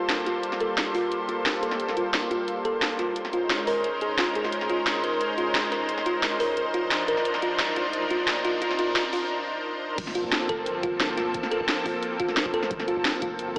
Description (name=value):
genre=liquid drum and bass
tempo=176 BPM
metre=4/4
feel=straight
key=G minor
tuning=A4 = 445 Hz
part: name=lush unison pad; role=sustained chords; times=0.0-13.6 s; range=F3 to C5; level=-27 LUFS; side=equal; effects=chorus, sidechain pumping
part: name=thumb-piano-like synth pluck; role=arpeggios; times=0.0-13.6 s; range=F4 to Bb4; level=-28 LUFS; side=equal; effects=chorus, vintage 12-bit sampler grit, tape echo
part: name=drum and bass drum kit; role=drums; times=0.1-13.6 s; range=crash cymbal, hi-hat, snare drum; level=-28 LUFS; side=equal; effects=overdrive, high-pass filter on hats, high-pass filter on snare, high-pass filter on cymbals, high-pass filter on room
part: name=riser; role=sound effects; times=5.8-9.3 s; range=none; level=-41 LUFS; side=equal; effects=none
part: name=long sustained 808-style bass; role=bass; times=10.0-13.6 s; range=F1 to G1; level=-42 LUFS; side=equal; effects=none
part: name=electronic kick drum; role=drums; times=10.0-13.6 s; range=none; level=-38 LUFS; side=equal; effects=overdrive
room=wet plate reverb, RT60 2.1 s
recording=dreamy mix soaked in reverb, high-pass filter, AM radio sound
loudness=-23 LUFS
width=side -28 dB against mid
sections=0.0-10.0 A section; 10.0-13.6 B section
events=build-up 0.0-10.0; filter sweep on synth arpeggio sound 0.0-10.0; riser 5.8-9.3; break 9.3-10.0; drop 10.0-13.6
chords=0.0 Gm11; 3.2 Bbm11; 6.6 Cm11; 10.0 Gm11